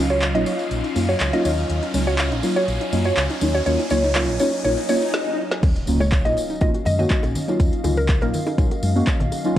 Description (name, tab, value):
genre	deep house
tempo	122 BPM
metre	4/4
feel	swing 53% on 16ths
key	Eb minor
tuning	A4 = 440 Hz
part	hollow soft pad	sustained chords	0.0-9.6 s	Gb3 to Ab5	-34 LUFS	equal	chorus, sidechain pumping
part	deep mellow chord stab	stabs	0.0-9.6 s	Gb3 to Gb4	-25 LUFS	equal	chorus, phaser, sidechain pumping, analog delay
part	fingered electric bass	bass	0.0-9.6 s	Bb1 to Gb2	-23 LUFS	equal	sidechain pumping
part	riser, swell and impact	sound effects	0.0-7.6 s	none	-30 LUFS	left 1 dB	none
part	soft string machine	texture	0.0-5.1 s	F4 to F5	-34 LUFS	left 1 dB	ensemble chorus, sidechain pumping
part	warbly tape-like pad	texture	0.0-9.6 s	Gb3 to F5	-33 LUFS	right 1 dB	none
part	mallet-like synth pluck	melody	0.1-8.7 s	Bb4 to Eb5	-25 LUFS	equal	analog chorus, cassette tape, analog delay
part	soft round pluck	arpeggios	0.1-9.6 s	Db4 to Db5	-31 LUFS	right 1 dB	chorus, sidechain pumping, analog delay
part	tambourine	percussion	0.1-9.6 s	none	-38 LUFS	left 3 dB	none
part	deep house drum kit	drums	0.2-9.6 s	crash cymbal, handclaps, hi-hat, snare drum	-29 LUFS	equal	vintage 12-bit sampler grit, studio ambience
part	electronic kick drum	drums	5.6-9.6 s	none	-19 LUFS	equal	vintage 12-bit sampler grit, studio ambience
part	bongos and congas	percussion	5.6-9.4 s	none	-29 LUFS	left 2 dB	sidechain pumping on perc
room	moderate plate reverb, RT60 2.2 s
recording	cassette tape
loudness	-18 LUFS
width	side -12 dB against mid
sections	0.0-5.6 A section; 5.6-9.6 B section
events	build-up 0.0-5.6; riser 0.0-5.1; filter sweep on synth stab 0.0-5.6; swell 4.6-5.6; break 5.1-5.6; drum fill 5.1-5.6; drop 5.6-9.6; impact 5.6-7.6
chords	0.0 Ebm9